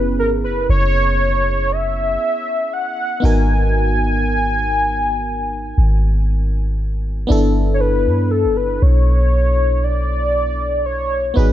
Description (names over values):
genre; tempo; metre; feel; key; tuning
contemporary R&B; 59 BPM; 4/4; straight; unclear; A4 = 437 Hz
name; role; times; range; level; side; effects
warm velvety synth lead; melody; 0.0-11.5 s; A4 to G#5; -19 LUFS; left 1 dB; chorus, ping-pong delay
FM electric piano; accompaniment; 0.0-11.5 s; B3 to A#4; -24 LUFS; equal; chorus
soft 808-style bass; bass; 0.0-11.5 s; F#1 to G2; -17 LUFS; equal; none
room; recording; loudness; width
digital ambience; dark, warm production; -15 LUFS; side -12 dB against mid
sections
0.0-11.5 A section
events
none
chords
0.0 F#7sus4; 3.2 G#m7; 7.3 G6